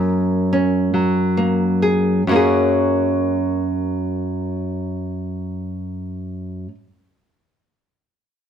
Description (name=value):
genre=folk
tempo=63-76 BPM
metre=3/4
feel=straight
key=F# major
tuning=A4 = 440 Hz
part: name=nylon-string guitar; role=solo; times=0.0-6.7 s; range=F#2 to A#4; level=-18 LUFS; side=equal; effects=none
room=moderate studio reverb, RT60 0.8 s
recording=none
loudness=-17 LUFS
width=side -8 dB against mid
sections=0.0-2.3 A section; 2.3-8.0 B section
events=slowing down 0.0-2.3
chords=0.0 F#add9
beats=0.51 1.35 | 2.27 3.22 4.17 | 5.12 6.07